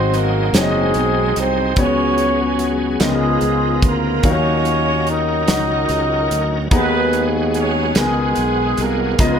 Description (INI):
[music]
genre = slow gospel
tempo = 49 BPM (dotted quarters)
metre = 6/8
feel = straight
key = unclear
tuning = A4 = 442 Hz
[part]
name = dark horn section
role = melody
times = 0.0-9.4 s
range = G#3 to D#5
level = -19 LUFS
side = right 2 dB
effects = none
[part]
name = warm grand piano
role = accompaniment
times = 0.0-9.4 s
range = G#2 to A#5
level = -21 LUFS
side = left 4 dB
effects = none
[part]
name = bright tonewheel organ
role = sustained chords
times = 0.0-9.4 s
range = E#3 to A#4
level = -26 LUFS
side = right 2 dB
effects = slow rotary speaker, overdrive, chorus vibrato
[part]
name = sustaining fretless electric bass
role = bass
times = 0.0-9.4 s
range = F#1 to D#2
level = -21 LUFS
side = equal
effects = wide subtle chorus
[part]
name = modern studio drum kit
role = drums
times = 0.1-9.4 s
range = hi-hat, kick drum, snare drum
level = -19 LUFS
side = right 1 dB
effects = none
[sound]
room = light reverb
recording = none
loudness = -15 LUFS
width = side -7 dB against mid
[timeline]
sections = 0.0-9.4 A section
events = none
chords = 0.0 G#7; 1.8 C#7sus4; 3.0 C#13; 4.2 D#m9; 6.7 G#m9/D#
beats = 0.55 | 1.78 3.01 | 4.25 5.48 | 6.72 7.96 | 9.19